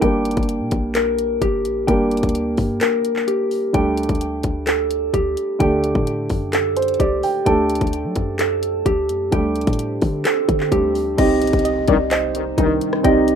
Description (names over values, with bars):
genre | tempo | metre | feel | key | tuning
hip hop, trap | 129 BPM | 4/4 | half-time | unclear | A4 = 440 Hz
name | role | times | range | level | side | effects
dark concert grand piano | accompaniment | 0.0-13.4 s | D3 to G5 | -21 LUFS | right 2 dB | low-pass filter
mellow electric guitar | arpeggios | 0.0-13.4 s | Eb4 to G5 | -22 LUFS | equal | low-pass filter, ping-pong delay
clean 808-style bass | bass | 0.0-13.4 s | G1 to F#3 | -27 LUFS | left 1 dB | none
trap drum kit | drums | 0.0-13.4 s | crash cymbal, handclaps, hi-hat, kick drum, rim click | -22 LUFS | left 1 dB | none
swell and impact | sound effects | 9.9-13.0 s | none | -34 LUFS | right 1 dB | none
dark analog pad | sustained chords | 11.7-13.4 s | C3 to Eb4 | -28 LUFS | left 1 dB | chorus, phaser
hollow square pluck | second line | 11.6-13.4 s | D5 to G5 | -24 LUFS | equal | chorus, ping-pong delay
dark brass ensemble | stabs | 11.9-13.0 s | C2 to Eb3 | -21 LUFS | left 4 dB | ping-pong delay
room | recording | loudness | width
light reverb | rough home demo mix | -17 LUFS | side -7 dB against mid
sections
0.0-11.2 A section; 11.2-13.4 B section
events
kick muted 2.8-3.7; grand piano fill 6.5-7.5; swell 9.9-11.2; impact 11.2-13.0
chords
0.0 Gm; 3.7 Dsus4; 11.2 Cmadd9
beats
| 0.02 0.49 0.95 1.42 | 1.88 2.35 2.81 3.28 | 3.74 4.21 4.67 5.14 | 5.60 6.07 6.53 7.00 | 7.46 7.93 8.39 8.86 | 9.32 9.79 10.25 10.72 | 11.18 11.65 12.11 12.58 | 13.04